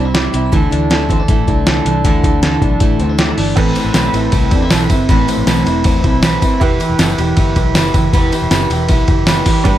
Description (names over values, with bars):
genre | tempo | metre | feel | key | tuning
jangly indie pop | 158 BPM | 4/4 | straight | unclear | A4 = 436 Hz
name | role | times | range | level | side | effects
picked steel-string acoustic guitar | accompaniment | 0.0-9.8 s | A2 to B4 | -18 LUFS | right 5 dB | none
electric guitar through a small old amp | arpeggios | 0.0-9.8 s | A2 to B4 | -18 LUFS | left 2 dB | digital delay
vintage muted fingered electric bass | bass | 0.0-9.8 s | E1 to E2 | -18 LUFS | equal | none
dusty soul sampler-style drum kit | drums | 0.1-9.7 s | crash cymbal, hi-hat, kick drum, ride cymbal, snare drum | -14 LUFS | equal | none
bright upright piano | accompaniment | 3.6-9.8 s | C4 to B4 | -25 LUFS | right 7 dB | none
tambourine | percussion | 3.8-9.7 s | none | -30 LUFS | left 15 dB | none
room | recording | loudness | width
little or no reverb | dark, warm production | -11 LUFS | side -12 dB against mid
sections
0.0-3.6 A section; 3.6-9.8 B section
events
none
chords
0.0 C; 3.6 Amadd9; 6.6 Em